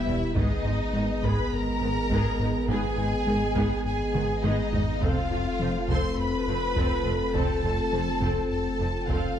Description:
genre	cinematic, hybrid orchestral and electronic film score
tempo	103 BPM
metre	4/4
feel	straight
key	unclear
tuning	A4 = 440 Hz
part	warm symphonic violin section	melody	0.0-9.4 s	D#5 to C6	-34 LUFS	left 2 dB	none
part	rich symphonic violin section	second line	0.0-9.4 s	D#4 to C5	-32 LUFS	equal	none
part	rich symphonic viola section	accompaniment	0.0-9.4 s	D#3 to A4	-36 LUFS	right 2 dB	none
part	dark analog pad	sustained chords	0.0-9.4 s	G3 to D#5	-34 LUFS	right 2 dB	chorus, phaser
part	mellow French horn section	sustained chords	0.0-9.4 s	B3 to A4	-33 LUFS	left 4 dB	none
part	punchy sub bass	bass	0.0-9.4 s	E1 to G#1	-34 LUFS	equal	none
part	round analog bass	riff	0.1-9.3 s	E2 to G#3	-32 LUFS	left 2 dB	none
part	clear symphonic cello section	bass	0.1-9.2 s	E2 to G#2	-34 LUFS	right 2 dB	none
part	warm symphonic double bass section	bass	0.1-9.2 s	E1 to G#1	-34 LUFS	right 3 dB	none
part	taiko ensemble	drums	0.4-9.4 s	none	-33 LUFS	equal	none
room	moderate scoring stage reverb, RT60 1.9 s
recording	dark, warm production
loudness	-24 LUFS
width	side -9 dB against mid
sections	0.0-9.4 A section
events	drum fill 4.1-5.0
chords	0.4 G#m; 5.0 F

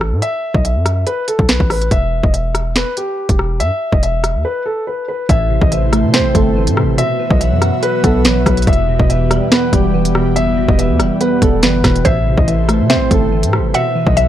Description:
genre	hip hop, drill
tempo	142 BPM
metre	4/4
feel	half-time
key	E minor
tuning	A4 = 439 Hz
part	dark baby grand piano	melody	0.0-14.3 s	G4 to E5	-19 LUFS	left 1 dB	none
part	hard-hitting 808-style bass	bass	0.0-14.3 s	E1 to C3	-16 LUFS	equal	none
part	drill drum kit	drums	0.0-14.3 s	finger snaps, hi-hat, kick drum, rim click, snare drum	-16 LUFS	equal	none
part	glassy digital keys	accompaniment	5.3-14.3 s	E2 to B4	-17 LUFS	right 1 dB	chorus
part	airy breathy pad	sustained chords	5.3-14.3 s	E3 to E5	-23 LUFS	equal	chorus
part	mallet-like synth pluck	second line	12.0-14.3 s	C5 to F#5	-20 LUFS	left 2 dB	chorus
room	digital ambience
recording	dry, gritty hardware recording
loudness	-12 LUFS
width	side -12 dB against mid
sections	0.0-5.3 A section; 5.3-14.3 B section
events	break 4.4-5.3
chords	0.2 Bsus4; 1.9 E5; 5.3 Am; 7.0 Bsus4; 8.7 Em; 12.1 Am; 13.7 Bsus4

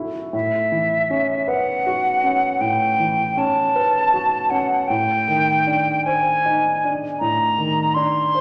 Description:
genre	classical, impressionist duo for flute and grand piano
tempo	53 BPM (dotted quarters)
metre	12/8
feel	rubato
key	unclear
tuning	A4 = 440 Hz
part	dark grand piano	accompaniment	0.0-8.4 s	F#2 to B#4	-26 LUFS	equal	none
part	hollow concert flute	melody	0.3-8.4 s	E5 to B#5	-20 LUFS	equal	none
room	wet concert hall reverb, RT60 1.9 s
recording	none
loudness	-19 LUFS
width	mono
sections	0.0-8.4 A section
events	none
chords	0.3 A69; 4.9 G#maj7#11/A

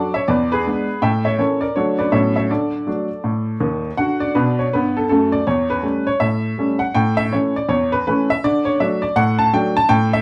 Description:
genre	jazz, stride piano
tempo	162 BPM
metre	4/4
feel	swing 62% on 8ths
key	D major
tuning	A4 = 440 Hz
part	clear upright piano	solo	0.0-10.2 s	Eb2 to A5	-18 LUFS	equal	none
room	wet small room reverb, RT60 0.5 s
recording	heard from further back in the room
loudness	-19 LUFS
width	mono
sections	0.0-4.0 A section; 4.0-10.2 A section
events	none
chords	0.3 E7; 1.0 A; 1.8 D; 2.1 A69; 2.5 D; 5.5 A7/E; 6.9 A; 8.4 D

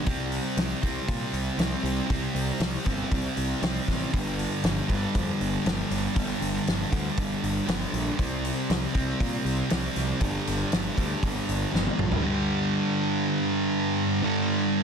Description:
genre	quiet-loud alternative rock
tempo	118 BPM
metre	4/4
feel	straight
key	unclear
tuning	A4 = 442 Hz
part	thick fuzz guitar	riff	0.0-14.8 s	G2 to C4	-27 LUFS	right 1 dB	distortion
part	fuzz picked electric bass	bass	0.1-12.1 s	G1 to Bb2	-31 LUFS	equal	overdrive
part	loose indie drum kit	drums	0.1-12.2 s	hi-hat, kick drum, snare drum, toms	-29 LUFS	equal	none
room	light reverb, small room ambience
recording	dense, heavily limited modern master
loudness	-24 LUFS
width	side -6 dB against mid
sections	0.0-12.2 A section; 12.2-14.8 B section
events	drum fill 11.7-12.2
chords	0.1 C5; 4.1 G5; 8.2 C5; 10.2 G5

